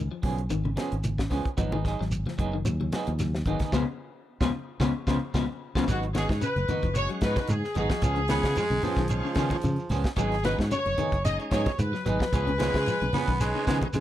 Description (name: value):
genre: afrobeat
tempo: 112 BPM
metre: 4/4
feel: swing 54% on 16ths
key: G# dorian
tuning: A4 = 440 Hz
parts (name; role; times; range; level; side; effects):
- clean electric guitar; arpeggios; 0.0-14.0 s; B2 to F#3; -33 LUFS; left 6 dB; spring reverb
- fingered electric bass; bass; 0.0-14.0 s; F#1 to C#3; -29 LUFS; equal; none
- electric guitar at the edge of break-up; stabs; 0.2-13.8 s; E#3 to G#4; -34 LUFS; right 4 dB; tremolo
- tight funk drum kit; drums; 0.2-14.0 s; hi-hat, kick drum, snare drum; -30 LUFS; equal; none
- congas; percussion; 0.2-14.0 s; none; -33 LUFS; right 1 dB; none
- shekere; percussion; 0.2-14.0 s; none; -32 LUFS; right 1 dB; none
- warm horn section; melody; 5.9-14.0 s; F#4 to D#5; -30 LUFS; left 1 dB; none
- bright tonewheel organ; accompaniment; 5.9-13.9 s; G#3 to F#4; -36 LUFS; equal; slow rotary speaker, overdrive
- raspy baritone saxophone; second line; 8.3-14.0 s; E#3 to B3; -31 LUFS; right 4 dB; none
room: small room ambience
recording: dry, close 1970s-style studio recording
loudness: -24 LUFS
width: side -12 dB against mid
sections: 0.0-5.9 A section; 5.9-14.0 B section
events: band accent 3.7-5.9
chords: 0.0 C#7; 1.6 G#m7; 3.7 C#7; 5.9 G#m7; 8.0 C#7; 10.2 G#m7; 12.3 C#7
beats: 0.50 1.04 | 1.58 2.12 2.65 3.19 | 3.73 4.26 4.80 5.34 | 5.88 6.42 6.95 7.49 | 8.03 8.56 9.10 9.64 | 10.18 10.72 11.25 11.79 | 12.33 12.87 13.41 13.94